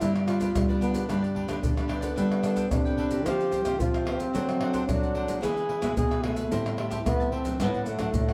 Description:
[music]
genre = samba and choro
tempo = 111 BPM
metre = 4/4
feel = straight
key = unclear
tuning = A4 = 440 Hz
[part]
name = breathy trombone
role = melody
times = 0.0-8.3 s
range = A3 to G#4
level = -32 LUFS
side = equal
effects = none
[part]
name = cavaquinho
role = accompaniment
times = 0.0-8.3 s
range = D4 to A5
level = -41 LUFS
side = equal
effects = none
[part]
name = nylon-string guitar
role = accompaniment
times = 0.0-8.3 s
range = G2 to A4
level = -38 LUFS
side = equal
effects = none
[part]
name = nylon-string guitar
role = bass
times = 0.0-8.3 s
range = A2 to A3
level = -32 LUFS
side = equal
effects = none
[part]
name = maracas, surdo, pandeiro and tamborim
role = percussion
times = 0.0-8.3 s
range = none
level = -33 LUFS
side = equal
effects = none
[part]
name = breathy trombone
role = second line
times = 0.8-1.8 s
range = G3 to B3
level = -36 LUFS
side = equal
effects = none
[sound]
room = wet large studio reverb, RT60 0.9 s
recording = heard from further back in the room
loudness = -27 LUFS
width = mono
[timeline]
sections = 0.0-8.3 A section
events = none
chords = 0.0 G; 2.2 Gadd9; 3.3 Fsus2; 4.3 D7/F#; 5.4 E; 6.5 Am7; 7.6 D/A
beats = | 0.02 0.56 1.10 1.64 | 2.18 2.72 3.26 3.81 | 4.35 4.89 5.43 5.97 | 6.52 7.06 7.60 8.14

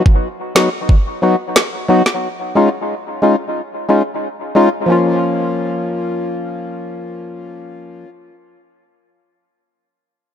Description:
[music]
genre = dancehall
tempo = 90 BPM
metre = 4/4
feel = straight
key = Bb phrygian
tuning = A4 = 440 Hz
[part]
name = percussive organ stab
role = accompaniment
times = 0.0-8.1 s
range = F3 to F#4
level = -16 LUFS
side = left 1 dB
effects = chorus, dub echo
[part]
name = island pop drum kit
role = drums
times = 0.1-2.2 s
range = kick drum, snare drum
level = -13 LUFS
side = equal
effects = overdrive
[sound]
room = light reverb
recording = echo-heavy mix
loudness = -14 LUFS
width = side -9 dB against mid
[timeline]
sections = 0.0-4.9 A section; 4.9-7.6 B section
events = none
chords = 0.0 B; 2.2 Dbadd9; 4.9 Bbm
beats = 0.22 0.89 1.56 | 2.22 2.89 3.56 4.22 | 4.89 5.56 6.22 6.89

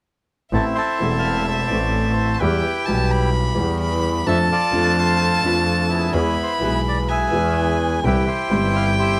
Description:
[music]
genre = tango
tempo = 128 BPM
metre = 4/4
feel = rubato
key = A minor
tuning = A4 = 440 Hz
[part]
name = bandoneon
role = melody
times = 0.5-9.2 s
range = B3 to F5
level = -25 LUFS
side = equal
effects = none
[part]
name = rich violin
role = second line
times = 0.5-9.2 s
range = E5 to B5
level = -27 LUFS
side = equal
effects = none
[part]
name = warm upright piano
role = accompaniment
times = 0.5-9.2 s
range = E1 to A4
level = -26 LUFS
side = equal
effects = none
[part]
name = clear double bass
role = bass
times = 0.5-9.2 s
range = E1 to F2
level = -24 LUFS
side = equal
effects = none
[sound]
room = light reverb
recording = close, detailed microphones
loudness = -20 LUFS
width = mono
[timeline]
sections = 0.5-9.2 A section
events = none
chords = 0.5 Am; 2.4 Em; 4.3 Dm/F; 6.1 E; 8.0 C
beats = | 0.53 1.00 1.47 1.94 | 2.41 2.87 3.34 3.80 | 4.27 4.73 5.20 5.67 | 6.14 6.61 7.08 7.56 | 8.04 8.51 8.98

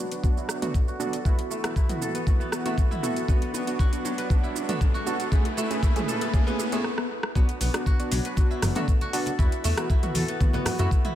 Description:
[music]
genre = afro house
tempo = 118 BPM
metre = 4/4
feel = straight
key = B minor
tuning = A4 = 440 Hz
[part]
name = warm analog pad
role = sustained chords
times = 0.0-11.2 s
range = E3 to B4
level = -35 LUFS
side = left 1 dB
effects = wide subtle chorus, sidechain pumping
[part]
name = kora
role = arpeggios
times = 0.0-11.2 s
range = F#3 to B4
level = -32 LUFS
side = equal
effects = sidechain pumping, low-pass filter, ping-pong delay
[part]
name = warm analog keys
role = stabs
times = 0.0-10.9 s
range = A3 to G#4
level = -32 LUFS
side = right 2 dB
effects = chorus, sidechain pumping, low-pass filter, ping-pong delay
[part]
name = smooth synth bass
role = bass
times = 0.0-10.9 s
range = F#1 to F#2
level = -29 LUFS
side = equal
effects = sidechain pumping, high-pass filter
[part]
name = riser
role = sound effects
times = 3.5-6.8 s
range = none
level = -36 LUFS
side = left 1 dB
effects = none
[part]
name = deep house drum kit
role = drums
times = 0.1-11.1 s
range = hi-hat, rim click, shaker, toms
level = -33 LUFS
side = equal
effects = overdrive
[part]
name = electronic kick drum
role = drums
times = 0.2-11.0 s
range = none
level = -22 LUFS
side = equal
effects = none
[part]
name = congas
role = percussion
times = 7.6-11.1 s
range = none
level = -34 LUFS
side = right 2 dB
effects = none
[sound]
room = light reverb, digital ambience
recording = none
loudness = -22 LUFS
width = side -12 dB against mid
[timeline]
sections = 0.0-7.4 A section; 7.4-11.2 B section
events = build-up 0.0-7.4; drum fill 0.0-6.8, 6.8-7.4; filter sweep on kora 0.0-7.4; riser 3.5-6.8; stop 6.8-7.4; drop 7.4-11.2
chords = 0.0 Bm; 1.3 Esus2; 3.3 Bm; 5.3 Amaj7; 7.4 Bm; 9.4 Esus2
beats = 0.23 0.74 | 1.25 1.76 2.27 2.78 | 3.29 3.79 4.30 4.81 | 5.32 5.83 6.34 6.85 | 7.35 7.86 8.37 8.88 | 9.39 9.90 10.40 10.91

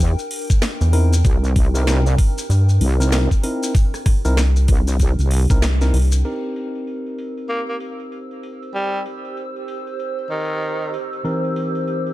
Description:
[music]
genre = glitch hop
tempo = 96 BPM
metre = 4/4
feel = swing 61% on 16ths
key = unclear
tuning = A4 = 440 Hz
[part]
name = wobble bass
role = bass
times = 0.0-5.5 s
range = C2 to E2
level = -17 LUFS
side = equal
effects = chorus
[part]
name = drum and bass drum kit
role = drums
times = 0.0-12.1 s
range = crash cymbal, hi-hat, rim click, snare drum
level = -28 LUFS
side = equal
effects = low-pass filter on hats, low-pass filter on snare, low-pass filter on cymbals, low-pass filter on room
[part]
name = electronic kick drum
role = drums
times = 0.0-5.6 s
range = none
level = -16 LUFS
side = equal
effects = none
[part]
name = maracas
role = percussion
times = 0.0-6.2 s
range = none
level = -31 LUFS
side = left 4 dB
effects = none
[part]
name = warbly tape-like pad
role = texture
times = 0.0-12.1 s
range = D4 to E6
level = -30 LUFS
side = right 1 dB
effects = chorus, built-in reverb, phaser, sidechain pumping
[part]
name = rubbery square bass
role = bass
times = 0.8-6.2 s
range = C2 to G2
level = -15 LUFS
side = equal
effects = none
[part]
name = mellow tine electric piano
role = stabs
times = 0.9-12.1 s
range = E3 to Bb4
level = -26 LUFS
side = equal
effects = sidechain pumping, tape echo
[part]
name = growling tenor saxophone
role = melody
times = 7.5-10.9 s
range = D#3 to Bb3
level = -26 LUFS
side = equal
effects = vintage 12-bit sampler grit, tape echo
[sound]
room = digital ambience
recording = dark, warm production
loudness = -16 LUFS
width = side -16 dB against mid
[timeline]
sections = 0.0-6.2 A section; 6.2-12.1 B section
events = band accent 5.6-5.9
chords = 0.0 C7#9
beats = 0.00 0.62 | 1.25 1.87 2.50 3.12 | 3.75 4.37 5.00 5.62 | 6.25 6.87 7.50 8.12 | 8.75 9.37 10.00 10.62 | 11.25 11.87

